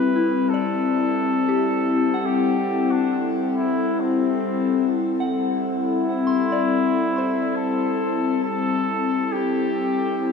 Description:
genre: ambient.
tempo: 68 BPM.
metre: 4/4.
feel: straight.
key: A dorian.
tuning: A4 = 441 Hz.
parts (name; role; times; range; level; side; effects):
clear flugelhorn; melody; 0.0-10.3 s; C4 to B4; -26 LUFS; equal; shimmer reverb, dub echo.
airy breathy pad; sustained chords; 0.0-10.3 s; G3 to E5; -21 LUFS; left 3 dB; chorus, shimmer reverb.
soft synth bell; arpeggios; 0.0-10.3 s; C4 to C6; -29 LUFS; left 2 dB; chorus, shimmer reverb, dub echo.
room: wet plate reverb, RT60 3.1 s.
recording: echo-heavy mix.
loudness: -19 LUFS.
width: side -5 dB against mid.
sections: 0.0-10.3 A section.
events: filter sweep on analog synth pad 0.0-10.3.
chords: 0.0 Am7.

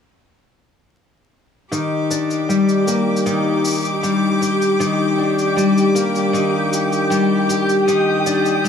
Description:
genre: folktronica.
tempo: 78 BPM.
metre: 4/4.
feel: straight.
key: Eb major.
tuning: A4 = 439 Hz.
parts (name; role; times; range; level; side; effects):
bright string quartet; sustained chords; 1.7-8.7 s; G4 to Eb6; -24 LUFS; equal; none.
picked twelve-string acoustic guitar; arpeggios; 1.7-8.7 s; Eb3 to G4; -16 LUFS; left 2 dB; low-pass filter, tape echo.
cabasa; drums; 1.7-8.7 s; none; -28 LUFS; left 2 dB; none.
twinkling granular texture; texture; 2.9-8.7 s; G5; -27 LUFS; right 2 dB; built-in reverb.
room: wet studio reverb, RT60 0.6 s.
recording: vinyl crackle, small room ambience.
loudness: -15 LUFS.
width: side -7 dB against mid.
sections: 1.7-8.7 A section.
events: none.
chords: 1.7 Ebmaj7.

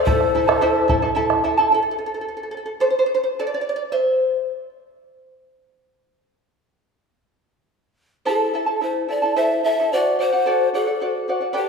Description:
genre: andean folk, Andean ensemble.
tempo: 73 BPM (dotted quarters).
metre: 6/8.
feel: straight.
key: A minor.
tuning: A4 = 437 Hz.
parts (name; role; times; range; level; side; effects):
breathy mellow pan flute; melody; 0.0-1.1, 8.3-11.7 s; G4 to E5; -22 LUFS; left 3 dB; none.
large quena; second line; 0.0-1.1 s; A4; -27 LUFS; left 1 dB; none.
charango; accompaniment; 0.0-4.7, 8.3-11.7 s; E4 to A5; -20 LUFS; right 1 dB; none.
bombo; percussion; 0.1-1.4 s; none; -23 LUFS; right 1 dB; none.
room: wet concert hall reverb, RT60 1.9 s.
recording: minimal, uncompressed stereo recording.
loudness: -18 LUFS.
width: side -5 dB against mid.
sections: 0.0-1.7 A section; 1.7-8.3 B section; 8.3-11.7 C section.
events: charango solo 1.7-8.3.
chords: 0.1 Am; 1.7 N.C.; 8.3 Am; 9.9 D7.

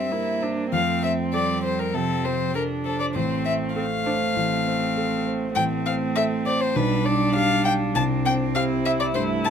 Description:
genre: quick classical-period movement for piano quartet.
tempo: 100 BPM.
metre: 4/4.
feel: rubato.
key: F major, C major from 5.6 s.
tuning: A4 = 438 Hz.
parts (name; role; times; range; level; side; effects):
rich violin; melody; 0.0-9.5 s; A4 to A5; -25 LUFS; left 4 dB; none.
rich cello; second line; 0.0-9.5 s; F3 to C4; -29 LUFS; right 6 dB; none.
dark baby grand piano; accompaniment; 0.0-9.5 s; A1 to F5; -26 LUFS; left 1 dB; none.
warm viola; accompaniment; 0.0-9.5 s; C4 to E4; -29 LUFS; right 3 dB; none.
room: light reverb.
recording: close, detailed microphones.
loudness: -21 LUFS.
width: side -7 dB against mid.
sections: 0.0-9.5 A section.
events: none.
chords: 0.0 C7/G; 0.7 F; 3.2 F/A; 5.6 Am; 6.8 G7/B; 8.0 C.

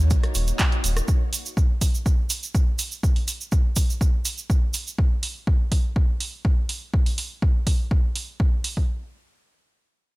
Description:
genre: acid house.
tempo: 123 BPM.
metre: 4/4.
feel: straight.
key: Eb minor.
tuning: A4 = 439 Hz.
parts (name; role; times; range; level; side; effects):
string machine, full ensemble; sustained chords; 0.0-1.0 s; Bb3 to Db5; -36 LUFS; equal; ensemble chorus, sidechain pumping.
warm sub bass; bass; 0.0-1.0 s; Eb1 to Eb2; -21 LUFS; equal; tube saturation, sidechain pumping.
electronic kick drum; drums; 0.1-8.9 s; none; -20 LUFS; equal; none.
punchy analog drum machine; drums; 0.1-8.7 s; handclaps, hi-hat, rim click; -28 LUFS; right 2 dB; none.
tube shaker; percussion; 0.1-5.0 s; none; -30 LUFS; right 5 dB; none.
room: little or no reverb.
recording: none.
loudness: -20 LUFS.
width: side -22 dB against mid.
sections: 0.0-8.9 A section.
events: none.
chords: 0.0 Ebm7.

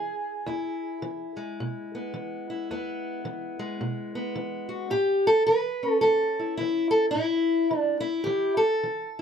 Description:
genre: acoustic country blues, solo or duo.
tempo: 107 BPM.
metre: 4/4.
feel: swing 61% on 8ths.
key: E major.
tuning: A4 = 440 Hz.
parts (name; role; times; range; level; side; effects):
fingerpicked steel-string acoustic guitar; solo; 0.0-9.2 s; E2 to B4; -24 LUFS; equal; none.
room: moderate small room reverb, RT60 0.6 s.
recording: none.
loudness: -24 LUFS.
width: side -7 dB against mid.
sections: 0.0-9.2 A section.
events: none.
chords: 0.0 E; 4.9 A.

